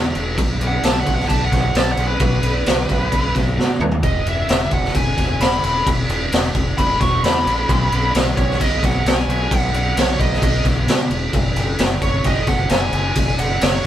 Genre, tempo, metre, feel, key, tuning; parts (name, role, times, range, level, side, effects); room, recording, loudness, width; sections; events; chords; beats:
blues rock power trio and southern rock; 131 BPM; 4/4; straight; B major; A4 = 440 Hz
growling fingered electric bass; bass; 0.0-13.8 s; E1 to B2; -22 LUFS; equal; overdrive
raw garage drum kit; drums; 0.1-13.7 s; crash cymbal, kick drum, snare drum, toms; -18 LUFS; equal
bluesy overdriven lead guitar; melody; 0.7-13.8 s; B4 to C#6; -22 LUFS; right 1 dB; distortion
little or no reverb; band playing live in one room; -15 LUFS; side -11 dB against mid
0.0-13.9 A section
lead electric guitar solo 0.0-13.9; drum fill 3.6-4.0
0.4 B5; 4.0 E5; 7.7 N.C.; 11.3 F#5
| 0.38 0.84 1.30 1.76 | 2.21 2.67 3.13 3.58 | 4.04 4.50 4.96 5.41 | 5.87 6.32 6.78 7.24 | 7.69 8.15 8.60 9.06 | 9.52 9.97 10.43 10.88 | 11.34 11.80 12.25 12.71 | 13.17 13.62